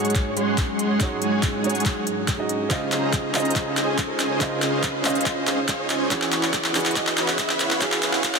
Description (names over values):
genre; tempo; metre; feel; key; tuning
future bass; 141 BPM; 4/4; half-time; unclear; A4 = 440 Hz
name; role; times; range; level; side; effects
warm grand piano; accompaniment; 0.0-8.4 s; Db3 to Eb5; -27 LUFS; right 3 dB; sidechain pumping, dub echo
airy breathy pad; sustained chords; 0.0-8.4 s; E2 to C5; -33 LUFS; equal; chorus, sidechain pumping
dense compressed supersaw; riff; 0.0-8.4 s; Ab3 to Db6; -25 LUFS; equal; sidechain pumping, low-pass filter, dub echo
trap drum kit; drums; 0.0-8.4 s; handclaps, hi-hat; -25 LUFS; equal; none
riser; sound effects; 0.6-8.4 s; none; -33 LUFS; right 1 dB; none
electronic kick drum; drums; 0.2-8.3 s; none; -26 LUFS; left 1 dB; none
room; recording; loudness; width
moderate huge ambient reverb, RT60 8.1 s; dense, heavily limited modern master, high-pass filter; -20 LUFS; side -4 dB against mid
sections
0.0-8.4 A section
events
build-up 0.0-8.4; drum fill 0.0-8.4; filter sweep 0.0-8.4; riser 0.6-8.4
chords
0.0 Ab7sus4; 2.7 Dbmaj9; 6.1 E69